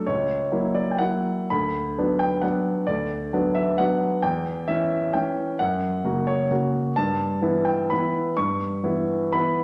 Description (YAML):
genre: classical, piano waltz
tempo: 130 BPM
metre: 3/4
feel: uneven beats, rubato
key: B minor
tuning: A4 = 440 Hz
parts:
  - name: clear baby grand piano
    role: solo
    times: 0.0-9.6 s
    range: C#2 to C#6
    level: -24 LUFS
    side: equal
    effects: none
room: wet recital hall reverb, RT60 1.4 s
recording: none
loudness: -24 LUFS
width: mono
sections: 0.0-9.6 A section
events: none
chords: 0.1 F#7/C#; 1.5 Bm/D; 4.2 C#dim/E; 5.6 F#; 7.0 Em/G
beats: | 0.08 0.53 0.99 | 1.51 1.98 2.43 | 2.88 3.32 3.79 | 4.24 4.68 5.14 | 5.60 6.05 6.50 | 6.96 7.42 7.91 | 8.37 8.84 9.33